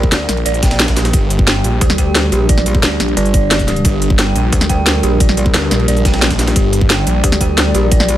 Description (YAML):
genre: dark technical drum and bass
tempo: 177 BPM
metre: 4/4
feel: straight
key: G minor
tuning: A4 = 440 Hz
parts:
  - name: dark analog pad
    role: sustained chords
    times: 0.0-8.2 s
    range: G3 to D5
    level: -20 LUFS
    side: equal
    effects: chorus, sidechain pumping
  - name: metallic wobble bass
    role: bass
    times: 0.0-8.2 s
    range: G1 to D2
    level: -16 LUFS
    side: equal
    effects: chorus
  - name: breakbeat sampler-style drum kit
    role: drums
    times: 0.0-8.2 s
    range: ride cymbal, snare drum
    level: -26 LUFS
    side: right 1 dB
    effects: none
  - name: electronic kick drum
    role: drums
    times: 0.0-8.0 s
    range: none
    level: -14 LUFS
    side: equal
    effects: none
  - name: dark detuned synth bell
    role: arpeggios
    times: 0.1-8.0 s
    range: G4 to G5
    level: -21 LUFS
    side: right 3 dB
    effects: chorus, phaser, vintage 12-bit sampler grit, sidechain pumping, dub echo
  - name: snarling distorted saw bass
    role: bass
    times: 0.1-7.2 s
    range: G1 to D2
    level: -16 LUFS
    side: equal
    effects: distortion, tube saturation, sidechain pumping
  - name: drum and bass drum kit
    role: drums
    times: 0.1-8.2 s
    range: hi-hat, snare drum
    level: -16 LUFS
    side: equal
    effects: none
room: digital ambience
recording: none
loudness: -11 LUFS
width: side -13 dB against mid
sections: 0.0-8.2 A section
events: none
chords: 0.0 Gm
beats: 0.12 0.46 0.80 | 1.14 1.47 1.81 2.15 | 2.49 2.83 3.17 3.51 | 3.85 4.19 4.53 4.86 | 5.20 5.54 5.88 6.22 | 6.56 6.90 7.24 7.58 | 7.92